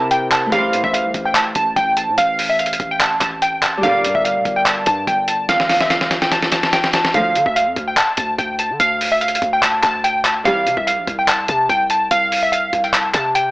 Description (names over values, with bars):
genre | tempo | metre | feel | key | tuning
hip hop, trap | 145 BPM | 4/4 | half-time | D minor | A4 = 440 Hz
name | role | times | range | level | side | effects
glassy digital keys | melody | 0.0-13.5 s | E5 to A5 | -16 LUFS | equal | chorus
Celtic harp | accompaniment | 0.0-7.2 s | C3 to D5 | -25 LUFS | left 1 dB | none
hard-hitting 808-style bass | bass | 0.0-13.5 s | F1 to D3 | -29 LUFS | equal | none
dusty soul sampler-style drum kit | drums | 0.1-13.5 s | handclaps, hi-hat, kick drum, snare drum | -19 LUFS | equal | none
warm symphonic string section | stabs | 0.5-0.7, 3.8-4.0, 7.1-7.3, 10.5-10.6 s | A2 to G3 | -23 LUFS | right 1 dB | analog delay
room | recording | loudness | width
light reverb, digital ambience | dry, gritty hardware recording, AM radio sound | -14 LUFS | side -20 dB against mid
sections
0.0-7.1 A section; 7.1-13.5 A section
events
drum fill 5.5-7.1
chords
0.0 C; 0.5 Am7; 3.8 Gm; 7.1 Dm; 10.5 N.C.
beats
0.11 | 0.52 0.94 1.35 1.76 | 2.18 2.59 3.00 3.42 | 3.83 4.25 4.66 5.07 | 5.49 5.90 6.32 6.73 | 7.14 7.56 7.97 8.38 | 8.80 9.21 9.63 10.04 | 10.45 10.87 11.28 11.69 | 12.11 12.52 12.94 13.35